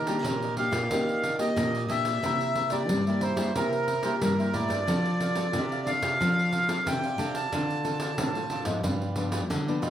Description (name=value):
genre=samba and choro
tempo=91 BPM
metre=4/4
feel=straight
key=unclear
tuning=A4 = 443 Hz
part: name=accordion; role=melody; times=0.0-8.6 s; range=Bb4 to A5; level=-29 LUFS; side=equal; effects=none
part: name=cavaquinho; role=accompaniment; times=0.0-9.9 s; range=D4 to F5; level=-36 LUFS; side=right 7 dB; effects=none
part: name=nylon-string guitar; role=accompaniment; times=0.0-9.9 s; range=G2 to A4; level=-32 LUFS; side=left 4 dB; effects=none
part: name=nylon-string guitar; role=bass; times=0.0-9.9 s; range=G2 to G3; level=-30 LUFS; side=equal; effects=none
part: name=pandeiro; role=percussion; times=0.1-9.9 s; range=none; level=-33 LUFS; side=right 1 dB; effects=none
room=moderate studio ambience, RT60 0.5 s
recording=close, detailed microphones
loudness=-25 LUFS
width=side -10 dB against mid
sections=0.0-9.9 A section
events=none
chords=0.0 Ebmaj7; 2.2 C7; 4.9 F6; 7.5 Dm7; 8.8 G7